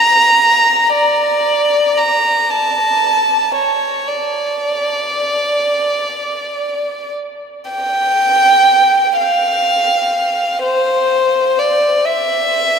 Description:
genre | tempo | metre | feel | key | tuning
classical, free, expressive piece for unaccompanied violin | 27-44 BPM (dotted quarters) | 6/8 | rubato | unclear | A4 = 440 Hz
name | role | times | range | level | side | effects
warm violin | solo | 0.0-12.8 s | C5 to Bb5 | -12 LUFS | right 1 dB | none
room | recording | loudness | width
wet cathedral reverb, RT60 6.1 s | in a vast, echoing space | -12 LUFS | side -6 dB against mid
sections
0.0-7.7 A section; 7.7-12.8 B section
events
none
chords
none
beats
| 0.96 2.49 | 4.11 5.81 | 7.74 9.20 | 10.64 12.04

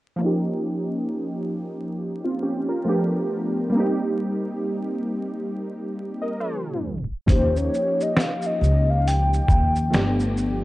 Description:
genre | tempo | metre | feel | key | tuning
lo-fi hip hop | 68 BPM | 4/4 | swing 60% on 16ths | unclear | A4 = 442 Hz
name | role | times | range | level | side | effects
warm analog keys | accompaniment | 0.2-10.6 s | F3 to F5 | -24 LUFS | equal | chorus, cassette tape, low-pass filter
warbly nostalgic lead | melody | 7.3-10.4 s | C5 to G5 | -24 LUFS | left 1 dB | chorus, low-pass filter, analog delay
upright bass | bass | 7.3-10.6 s | G1 to Eb2 | -21 LUFS | equal | none
trip hop sampler-style drum kit | drums | 7.3-10.6 s | finger snaps, hi-hat, kick drum, shaker, snare drum | -21 LUFS | equal | none
room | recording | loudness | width
light reverb | dark, warm production, vinyl crackle, tape stop, nothing above 10.6 kHz | -21 LUFS | side -17 dB against mid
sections
0.2-7.3 A section; 7.3-10.6 B section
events
filter sweep on synth keys 0.2-7.3; tape stop 6.4-7.3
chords
0.2 Eb7; 2.9 G7; 3.8 Cm7; 6.8 N.C.; 7.3 Eb7; 9.9 G7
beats
| 0.22 1.10 1.99 2.87 | 3.75 4.63 5.52 6.40 | 7.28 8.16 9.05 9.93

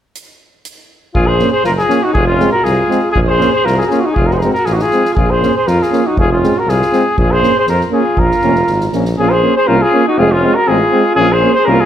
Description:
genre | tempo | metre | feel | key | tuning
balkan folk, Balkan brass band | 120 BPM | 2/4 | swing 55% on 16ths | Bb minor | A4 = 440 Hz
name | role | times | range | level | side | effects
soft-mallet drum kit | percussion | 0.2-9.1 s | hi-hat, kick drum, snare drum | -21 LUFS | equal | none
warm alto saxophone | second line | 1.1-11.9 s | Db4 to Ab4 | -17 LUFS | left 1 dB | none
mellow trumpet | melody | 1.2-11.9 s | F4 to C5 | -14 LUFS | equal | slapback echo
clear tuba | bass | 1.2-11.8 s | F1 to F2 | -18 LUFS | equal | none
bright trombone | accompaniment | 1.4-11.8 s | C4 to Db4 | -21 LUFS | left 5 dB | none
warm euphonium | accompaniment | 1.4-11.8 s | Ab3 to Bb3 | -20 LUFS | right 6 dB | none
room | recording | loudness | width
light reverb | none | -10 LUFS | side -10 dB against mid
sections
0.1-1.2 A section; 1.2-9.2 B section; 9.2-11.9 B section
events
none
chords
0.1 N.C.; 1.2 Bbm; 2.2 Fm; 3.2 Bbm; 4.2 Fm; 5.2 Bbm; 6.2 Fm; 7.2 Bbm; 10.2 Fm; 11.2 Bbm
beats
| 0.15 0.65 | 1.15 1.65 | 2.15 2.65 | 3.16 3.66 | 4.16 4.66 | 5.16 5.67 | 6.17 6.67 | 7.17 7.67 | 8.17 8.68 | 9.18 9.68 | 10.18 10.68 | 11.18 11.68

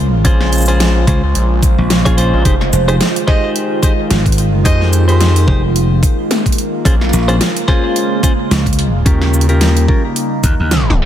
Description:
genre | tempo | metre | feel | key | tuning
glitch hop | 109 BPM | 4/4 | swing 57% on 16ths | F minor | A4 = 440 Hz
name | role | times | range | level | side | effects
warbly tape-like pad | sustained chords | 0.0-11.1 s | Db3 to C5 | -19 LUFS | right 1 dB | chorus, built-in reverb, phaser, sidechain pumping
slap bass | bass | 0.0-11.1 s | F1 to Eb2 | -14 LUFS | equal | none
clean electric guitar | stabs | 0.2-11.1 s | Db4 to Db5 | -20 LUFS | left 2 dB | vintage 12-bit sampler grit, sidechain pumping, ping-pong delay
gritty driven synth bass | bass | 0.2-9.9 s | F1 to F2 | -13 LUFS | equal | overdrive
dubstep drum kit | drums | 0.2-11.1 s | hi-hat, shaker, snare drum | -19 LUFS | equal | overdrive
electronic kick drum | drums | 0.2-11.0 s | none | -13 LUFS | equal | overdrive
mellow harmonica | melody | 3.3-5.6 s | C5 to Eb5 | -24 LUFS | right 1 dB | ping-pong delay
room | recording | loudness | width
little or no reverb | tape stop | -10 LUFS | side -11 dB against mid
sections
0.0-11.1 A section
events
tape stop 10.7-11.1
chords
0.0 Bbm7; 2.5 Fm7; 6.9 Bbm7; 9.1 Eb7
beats
| 0.25 0.80 1.35 1.91 | 2.46 3.01 3.56 4.11 | 4.66 5.21 5.76 6.31 | 6.86 7.41 7.96 8.51 | 9.06 9.61 10.16 10.71

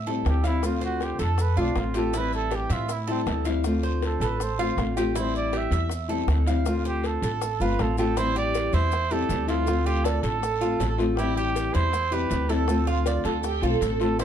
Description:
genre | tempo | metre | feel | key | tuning
latin, Cuban son and guajira | 159 BPM | 4/4 | straight | A minor | A4 = 440 Hz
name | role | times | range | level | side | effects
Cuban tres | arpeggios | 0.0-14.2 s | E4 to F5 | -32 LUFS | right 7 dB | none
upright bass | bass | 0.0-14.2 s | G1 to A2 | -26 LUFS | equal | none
nylon-string guitar | accompaniment | 0.1-14.2 s | D3 to F4 | -28 LUFS | left 4 dB | none
bongos | percussion | 0.1-14.2 s | none | -34 LUFS | left 8 dB | none
maracas | percussion | 0.1-14.2 s | none | -44 LUFS | left 6 dB | none
breathy trumpet | melody | 0.3-14.2 s | C4 to E5 | -29 LUFS | right 5 dB | none
guiro | percussion | 0.3-14.2 s | none | -43 LUFS | left 6 dB | none
warm chamber violin section | second line | 13.2-13.9 s | F4 to A4 | -28 LUFS | right 6 dB | none
room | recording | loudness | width
light reverb | dark, warm production | -22 LUFS | side -9 dB against mid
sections
0.0-8.2 A section; 8.2-14.2 B section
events
trumpet solo 0.0-8.2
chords
0.0 Am7; 0.6 Dm7; 2.1 Am7; 3.6 Dm7; 5.2 Am7; 6.7 Dm7; 8.2 Am7; 9.7 Dm7; 11.2 Am7; 12.7 Dm7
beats
0.26 | 0.63 1.01 1.39 1.76 | 2.14 2.52 2.89 3.27 | 3.65 4.02 4.40 4.78 | 5.15 5.53 5.91 6.28 | 6.66 7.04 7.41 7.79 | 8.17 8.54 8.92 9.30 | 9.67 10.05 10.43 10.80 | 11.18 11.55 11.93 12.31 | 12.69 13.06 13.44 13.81 | 14.19

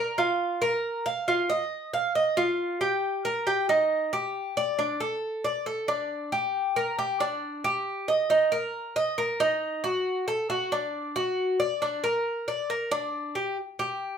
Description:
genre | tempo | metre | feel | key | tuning
latin | 137 BPM | 4/4 | straight | G minor | A4 = 440 Hz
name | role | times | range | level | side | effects
Cuban tres | solo | 0.0-14.2 s | D4 to F5 | -25 LUFS | equal | none
room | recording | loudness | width
wet studio reverb, RT60 0.6 s | heard from further back in the room | -25 LUFS | side -7 dB against mid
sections
0.0-13.6 A section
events
none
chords
none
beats
0.40 0.84 | 1.28 1.72 2.15 2.59 | 3.03 3.47 3.91 4.35 | 4.79 5.23 5.67 6.10 | 6.54 6.98 7.42 7.86 | 8.30 8.74 9.18 9.62 | 10.06 10.50 10.94 11.38 | 11.82 12.26 12.70 13.14 | 13.57 14.02

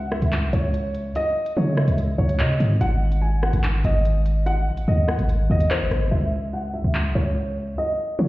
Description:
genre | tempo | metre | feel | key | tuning
hip hop, drill | 145 BPM | 4/4 | half-time | C# harmonic minor | A4 = 440 Hz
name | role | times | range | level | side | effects
dark concert grand piano | melody | 0.0-8.3 s | B#4 to G#5 | -26 LUFS | equal | low-pass filter, ping-pong delay
hard-hitting 808-style bass | bass | 0.0-8.3 s | F#1 to C#3 | -20 LUFS | equal | none
drill drum kit | drums | 0.1-7.0 s | handclaps, hi-hat, rim click | -30 LUFS | equal | overdrive
room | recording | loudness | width
digital ambience | heard muffled through a wall, stone room reverb, EQ | -19 LUFS | side -18 dB against mid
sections
0.0-6.1 A section; 6.1-8.3 B section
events
break 6.1-8.3; filter sweep on grand piano 6.1-8.3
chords
0.0 C#madd9; 2.8 G#7(no3); 6.1 C#m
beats
0.33 0.74 | 1.15 1.57 1.98 2.40 | 2.81 3.22 3.64 4.05 | 4.46 4.88 5.29 5.71 | 6.12 6.53 6.95 7.36 | 7.77 8.19

